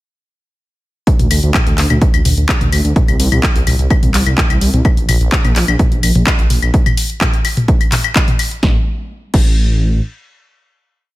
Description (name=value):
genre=melodic techno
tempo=127 BPM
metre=4/4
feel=straight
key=unclear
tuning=A4 = 440 Hz
part: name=electronic kick drum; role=drums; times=1.1-9.5 s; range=none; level=-14 LUFS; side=equal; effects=studio reverb
part: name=house drum kit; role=drums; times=1.1-9.5 s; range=claves, crash cymbal, handclaps, hi-hat, snare drum, toms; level=-17 LUFS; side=left 2 dB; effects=studio reverb
part: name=dark detuned saw bass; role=bass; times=1.2-10.0 s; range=A1 to D2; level=-14 LUFS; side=equal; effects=sidechain pumping
room=digital ambience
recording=none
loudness=-11 LUFS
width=side -17 dB against mid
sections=1.1-8.6 drop; 8.6-11.2 final note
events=drop 1.1-8.6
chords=none